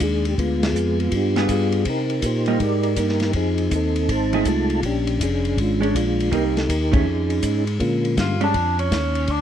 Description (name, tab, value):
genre	soul jazz organ trio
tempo	161 BPM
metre	4/4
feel	swing 66% on 8ths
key	Bb mixolydian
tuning	A4 = 441 Hz
part	percussive tonewheel organ	melody	0.0-8.4 s	D3 to A5	-22 LUFS	equal	slow rotary speaker, chorus vibrato
part	tonewheel organ	bass	0.0-9.4 s	F1 to C3	-23 LUFS	equal	overdrive, slow rotary speaker
part	warm soul drum kit	drums	0.0-9.4 s	hi-hat, kick drum, ride cymbal, snare drum	-27 LUFS	left 1 dB	none
part	vintage hollow-body jazz guitar	accompaniment	1.4-8.5 s	Eb3 to Ab4	-25 LUFS	right 3 dB	none
part	dark tenor saxophone	melody	8.2-9.4 s	C#4 to F4	-22 LUFS	equal	none
room	light reverb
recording	dark, warm production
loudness	-18 LUFS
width	side -9 dB against mid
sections	0.0-7.8 A section; 7.8-9.4 B section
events	band accent 0.6, 6.9; tenor saxophone solo 7.8-9.4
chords	0.4 G7b9; 1.9 Cm7; 3.3 F7#9; 4.8 Bb7#9; 6.3 Cm7; 7.1 Dbadd9/F; 7.8 Bb7#9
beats	0.00 | 0.37 0.74 1.11 1.49 | 1.86 2.23 2.60 2.97 | 3.35 3.72 4.09 4.46 | 4.83 5.20 5.58 5.95 | 6.32 6.69 7.06 7.43 | 7.80 8.18 8.55 8.92 | 9.29